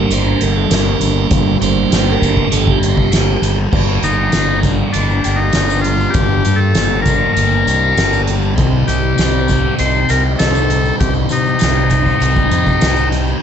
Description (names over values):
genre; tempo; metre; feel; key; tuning
psychedelic rock; 99 BPM; 4/4; straight; G minor; A4 = 435 Hz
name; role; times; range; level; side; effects
tonewheel organ; sustained chords; 0.0-13.4 s; G3 to A5; -22 LUFS; right 8 dB; stopped rotary speaker
thick fuzz guitar; riff; 0.0-13.4 s; G2 to G4; -18 LUFS; left 1 dB; distortion, phaser
fuzz fingered electric bass; bass; 0.0-13.3 s; G1 to C3; -17 LUFS; equal; overdrive
soft-mallet drum kit; drums; 0.1-13.3 s; crash cymbal, hi-hat, kick drum, snare drum; -18 LUFS; equal; none
tambourine; percussion; 0.1-13.3 s; none; -32 LUFS; left 13 dB; none
combo organ; melody; 4.0-13.1 s; D4 to C5; -18 LUFS; left 3 dB; slapback echo
room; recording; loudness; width
small room ambience; nothing above 8.0 kHz; -12 LUFS; side -8 dB against mid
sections
0.0-3.7 A section; 3.7-13.4 B section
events
tonewheel organ solo 0.0-3.7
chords
0.0 Gm; 8.6 Cm